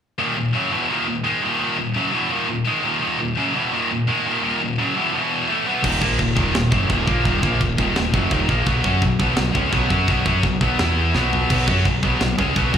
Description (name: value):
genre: heavy metal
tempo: 170 BPM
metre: 4/4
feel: straight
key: Eb phrygian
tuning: A4 = 440 Hz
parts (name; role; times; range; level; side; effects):
- scooped high-gain guitar; riff; 0.2-12.8 s; Eb2 to F#4; -22 LUFS; left 8 dB; distortion, slapback echo
- tight distorted guitar; riff; 0.2-12.8 s; Eb2 to F#4; -24 LUFS; right 10 dB; distortion, slapback echo
- sludgy distorted guitar; riff; 5.8-12.8 s; Eb2 to F#4; -26 LUFS; equal; overdrive, slapback echo
- growling fingered electric bass; bass; 5.8-12.8 s; Eb1 to F#2; -22 LUFS; equal; overdrive
- tight metal drum kit; drums; 5.8-12.8 s; china cymbal, crash cymbal, kick drum, snare drum, toms; -22 LUFS; equal; none
room: studio reverb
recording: live gig heard through the venue's PA, club reverb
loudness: -17 LUFS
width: side -8 dB against mid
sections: 0.2-5.8 A section; 5.8-12.8 B section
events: drum fill 11.1-11.5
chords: 0.2 Ebm; 5.1 E5; 5.5 B7sus4/A; 5.8 Ebm; 8.7 B5; 10.8 E5; 11.1 B5